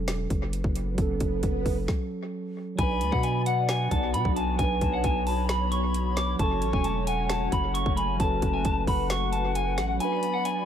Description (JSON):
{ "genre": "hip hop, trap", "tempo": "133 BPM", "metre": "4/4", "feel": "half-time", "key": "B dorian", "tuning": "A4 = 438 Hz", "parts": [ { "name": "mellow tine electric piano", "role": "accompaniment", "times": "0.0-10.7 s", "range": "F#3 to B4", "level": "-32 LUFS", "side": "right 4 dB", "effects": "low-pass filter, dub echo" }, { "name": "long sustained 808-style bass", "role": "bass", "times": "0.0-10.0 s", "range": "E1 to B2", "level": "-29 LUFS", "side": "equal", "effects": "none" }, { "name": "swell", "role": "sound effects", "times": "0.5-1.9 s", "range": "none", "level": "-38 LUFS", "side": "right 2 dB", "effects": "none" }, { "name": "trap drum kit", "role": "drums", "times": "0.1-10.6 s", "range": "hi-hat, kick drum, snare drum", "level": "-30 LUFS", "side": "equal", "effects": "none" }, { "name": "clean electric guitar", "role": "melody", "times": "2.8-10.6 s", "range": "F#5 to D6", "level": "-29 LUFS", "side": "equal", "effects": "low-pass filter, dub echo" }, { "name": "hollow concert flute", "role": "second line", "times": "2.8-10.6 s", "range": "F#5 to C#6", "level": "-34 LUFS", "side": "left 8 dB", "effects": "dub echo" }, { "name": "hollow soft pad", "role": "sustained chords", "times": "2.8-10.7 s", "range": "A3 to D5", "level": "-34 LUFS", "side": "left 3 dB", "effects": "ensemble chorus" } ], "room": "digital ambience", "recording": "echo-heavy mix", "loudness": "-24 LUFS", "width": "side -9 dB against mid", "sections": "0.0-2.8 A section; 2.8-10.7 B section", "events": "swell 0.5-2.8; stop 1.9-2.8; kick muted 10.0-10.7", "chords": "0.0 F#m; 2.8 Bm; 6.4 F#m; 10.0 Bm" }